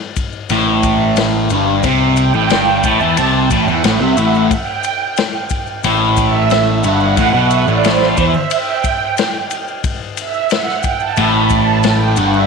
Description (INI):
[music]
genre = psychedelic rock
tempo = 90 BPM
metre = 4/4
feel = straight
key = A dorian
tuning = A4 = 439 Hz
[part]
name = vintage drum kit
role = drums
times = 0.2-12.3 s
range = kick drum, ride cymbal, snare drum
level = -20 LUFS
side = left 6 dB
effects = none
[part]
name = maracas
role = percussion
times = 0.2-12.4 s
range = none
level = -31 LUFS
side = left 18 dB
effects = none
[part]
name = fuzz guitar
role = riff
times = 0.5-12.5 s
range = G2 to E3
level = -13 LUFS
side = left 1 dB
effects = distortion, phaser
[part]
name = fuzz picked electric bass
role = bass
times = 0.5-12.5 s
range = G1 to E2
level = -19 LUFS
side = left 1 dB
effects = overdrive
[part]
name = string machine, violas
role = sustained chords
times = 2.2-12.5 s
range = C5 to B5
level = -18 LUFS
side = right 10 dB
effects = ensemble chorus
[sound]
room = moderate spring reverb, RT60 1.5 s, small room ambience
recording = 1960s-style stereo with parts hard left and right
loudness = -12 LUFS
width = side -5 dB against mid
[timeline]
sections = 0.0-12.5 A section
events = string machine solo 0.0-12.5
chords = 0.0 Am